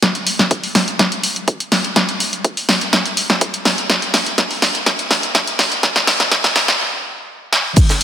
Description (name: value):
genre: house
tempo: 124 BPM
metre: 4/4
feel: straight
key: none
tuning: none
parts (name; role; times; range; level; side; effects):
- electronic kick drum; drums; 0.0-7.9 s; none; -15 LUFS; equal; high-pass filter on kick
- punchy analog drum machine; drums; 0.0-8.0 s; crash cymbal, hi-hat, shaker, snare drum; -14 LUFS; equal; none
- crisp fusion drum kit; drums; 7.8-8.0 s; hi-hat, snare drum; -22 LUFS; right 1 dB; sidechain pumping on hats, high-pass filter on hats, high-pass filter on snare, high-pass filter on room
room: wet lush hall reverb, RT60 2.1 s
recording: high-pass filter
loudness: -14 LUFS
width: side -10 dB against mid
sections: 0.0-7.8 A section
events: build-up 0.0-7.8; drum fill 0.0-6.8, 7.5; stop 6.8-7.8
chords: none